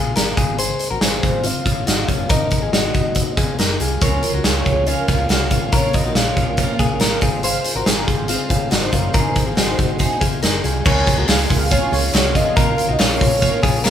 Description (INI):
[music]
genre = jangly indie pop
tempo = 140 BPM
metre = 4/4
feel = straight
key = Db major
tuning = A4 = 440 Hz
[part]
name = warm velvety synth lead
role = melody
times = 0.0-13.9 s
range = Ab4 to Ab5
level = -24 LUFS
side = equal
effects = chorus
[part]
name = direct-recorded clean electric guitar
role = arpeggios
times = 0.0-13.9 s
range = C4 to Db5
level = -24 LUFS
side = left 4 dB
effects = none
[part]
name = hollow-body short-scale fingered electric bass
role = bass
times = 0.0-13.9 s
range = Gb1 to Db2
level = -24 LUFS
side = right 1 dB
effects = none
[part]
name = big rock drum kit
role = drums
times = 0.2-13.9 s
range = crash cymbal, hi-hat, kick drum, snare drum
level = -17 LUFS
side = equal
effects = none
[part]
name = picked twelve-string acoustic guitar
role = accompaniment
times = 4.0-13.9 s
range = Bb2 to C5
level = -26 LUFS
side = right 5 dB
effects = none
[part]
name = group handclap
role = percussion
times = 11.3-13.9 s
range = none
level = -29 LUFS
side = left 4 dB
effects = none
[sound]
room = moderate large studio reverb, RT60 1.1 s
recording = band playing live in one room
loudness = -15 LUFS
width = side -9 dB against mid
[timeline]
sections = 0.0-10.9 A section; 10.9-13.9 B section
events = none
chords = 0.4 Fm/Ab; 2.3 Ab5; 4.0 Db6; 5.7 Bbm; 7.2 Fm7/Ab; 9.1 Ab; 10.9 Db6; 12.6 Bbm